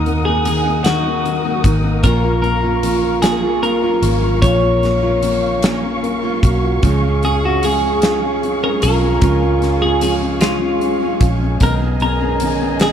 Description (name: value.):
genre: six-eight pop ballad.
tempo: 50 BPM (dotted quarters).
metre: 6/8.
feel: straight.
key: unclear.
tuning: A4 = 441 Hz.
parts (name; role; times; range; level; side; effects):
twelve-string electric guitar; melody; 0.0-12.9 s; F4 to Db5; -19 LUFS; left 2 dB; spring reverb.
mellow French horn section; second line; 0.0-12.9 s; Db4 to Ab4; -23 LUFS; right 7 dB; none.
felt-muted upright piano; accompaniment; 0.0-12.9 s; Eb3 to F5; -22 LUFS; left 7 dB; none.
muted studio string section; sustained chords; 0.0-12.9 s; Ab4 to Eb6; -26 LUFS; left 2 dB; none.
picked steel-string acoustic guitar; arpeggios; 0.0-12.9 s; Bb2 to Ab4; -25 LUFS; right 11 dB; none.
vintage muted fingered electric bass; bass; 0.0-12.9 s; Ab1 to Eb2; -20 LUFS; equal; none.
huge arena drum kit; drums; 0.1-12.9 s; hi-hat, kick drum, snare drum; -22 LUFS; equal; none.
room: light reverb.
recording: none.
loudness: -13 LUFS.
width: side -9 dB against mid.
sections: 0.0-12.9 A section.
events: none.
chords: 0.0 Ebm; 2.0 Bbm; 6.8 Db; 11.6 Abm/Cb.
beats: 0.85 | 2.04 3.23 | 4.42 5.63 | 6.83 8.03 | 9.23 10.42 | 11.61 12.81.